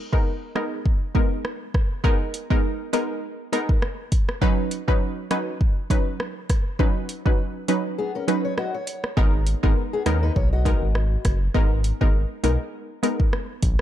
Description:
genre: dancehall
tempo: 101 BPM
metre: 4/4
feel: swing 56% on 16ths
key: G# minor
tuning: A4 = 442 Hz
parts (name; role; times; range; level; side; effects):
- analog pluck; accompaniment; 0.1-13.2 s; F#3 to B4; -26 LUFS; equal; chorus
- afro-pop drum kit; drums; 0.1-13.8 s; hi-hat, kick drum, rim click; -22 LUFS; equal; none
- fingerpicked old ladder-braced acoustic guitar; arpeggios; 8.0-11.4 s; B3 to D#5; -29 LUFS; left 5 dB; none
- round analog bass; bass; 9.2-13.8 s; F#1 to D#2; -22 LUFS; equal; none
room: little or no reverb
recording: dark, warm production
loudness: -21 LUFS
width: side -12 dB against mid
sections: 0.0-13.8 A section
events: break 8.0-9.2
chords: 0.0 G#madd9; 4.4 Badd9

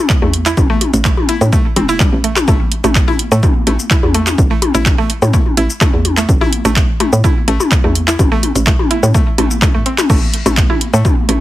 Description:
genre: minimal techno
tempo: 126 BPM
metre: 4/4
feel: straight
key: unclear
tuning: A4 = 441 Hz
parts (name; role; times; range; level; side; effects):
- electronic kick drum; drums; 0.1-11.1 s; none; -14 LUFS; equal; none
- techno drum kit; drums; 0.1-11.4 s; crash cymbal, handclaps, hi-hat, shaker; -18 LUFS; right 1 dB; none
- mallet-like synth pluck; riff; 0.2-11.3 s; G3 to E4; -19 LUFS; right 1 dB; chorus, sidechain pumping, digital delay
- hollow knocking FM bass; bass; 0.2-11.4 s; E1 to A2; -16 LUFS; equal; sidechain pumping
- electronic toms, woodblock and percussion blips; percussion; 0.2-11.4 s; none; -18 LUFS; left 2 dB; none
room: little or no reverb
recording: heavily compressed radio sound, multiband compression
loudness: -10 LUFS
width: side -15 dB against mid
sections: 0.0-11.4 A section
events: none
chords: 0.0 A5

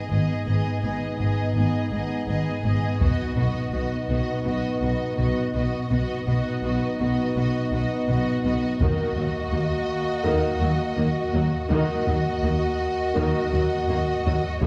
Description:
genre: cinematic, epic orchestral film score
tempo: 83 BPM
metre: 4/4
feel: straight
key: unclear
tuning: A4 = 441 Hz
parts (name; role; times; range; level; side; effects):
- warm symphonic violin section; melody; 0.0-14.7 s; C#5 to D#5; -36 LUFS; equal; none
- rich symphonic violin section; second line; 0.0-14.7 s; F#4 to G#4; -36 LUFS; equal; none
- dark symphonic viola section; accompaniment; 0.0-14.7 s; C#3 to B3; -32 LUFS; equal; none
- mellow French horn section; sustained chords; 0.0-14.7 s; A#3 to F#4; -31 LUFS; equal; none
- dark symphonic cello section; bass; 0.1-14.7 s; D#2 to B2; -30 LUFS; equal; none
- warm symphonic double bass section; bass; 0.1-14.7 s; F#1 to D#2; -30 LUFS; equal; none
- solo taiko drums; drums; 3.0-4.4, 8.8-10.2, 14.6-14.7 s; none; -28 LUFS; equal; none
room: wet concert hall reverb, RT60 1.9 s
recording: heard from further back in the room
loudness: -24 LUFS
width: mono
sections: 0.0-14.7 A section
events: none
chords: 0.0 G#m; 3.0 B; 8.8 D#m

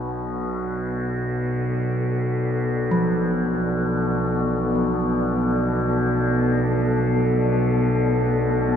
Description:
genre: dark ambient drone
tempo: free time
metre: none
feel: none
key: unclear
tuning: A4 = 439 Hz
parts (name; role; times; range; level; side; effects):
- deep dark ambient pad; sustained chords; 0.0-8.8 s; B3 to D5; -26 LUFS; equal; chorus, built-in reverb, shimmer reverb
- overtone-sweeping drone; drone; 0.0-8.8 s; B1 to B2; -22 LUFS; left 1 dB; chorus, built-in reverb
- gamelan-type bronze metallophone; arpeggios; 2.9-8.8 s; E#3; -28 LUFS; right 2 dB; tape echo
room: wet cathedral reverb, RT60 5.3 s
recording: in a vast, echoing space, small room ambience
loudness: -20 LUFS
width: side -8 dB against mid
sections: 0.0-8.8 A section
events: fade-in on ambient pad 0.0-8.8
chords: 0.0 Bm7

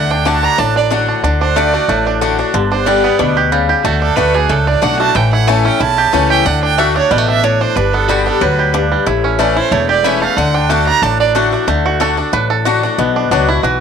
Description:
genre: bluegrass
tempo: 184 BPM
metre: 4/4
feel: swing 54% on 8ths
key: D major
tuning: A4 = 444 Hz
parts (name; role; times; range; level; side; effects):
- bluegrass banjo; melody; 0.0-13.8 s; D3 to B4; -16 LUFS; right 7 dB; none
- clear fiddle; melody; 0.0-11.3 s; F#4 to Bb5; -16 LUFS; right 8 dB; none
- picked swing-style acoustic guitar; accompaniment; 0.0-13.8 s; E2 to G4; -17 LUFS; left 13 dB; none
- upright bass; bass; 0.0-13.8 s; E1 to D2; -18 LUFS; left 1 dB; none
room: light reverb, small room ambience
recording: 1960s-style stereo with parts hard left and right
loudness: -11 LUFS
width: side -7 dB against mid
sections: 0.0-1.2 A section; 1.2-11.7 B section; 11.7-13.8 C section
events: five-string banjo solo 11.7-13.8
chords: 0.0 D; 2.5 G; 3.8 D; 5.2 A; 6.5 D; 7.8 G; 9.1 A; 10.4 D; 13.0 Bm

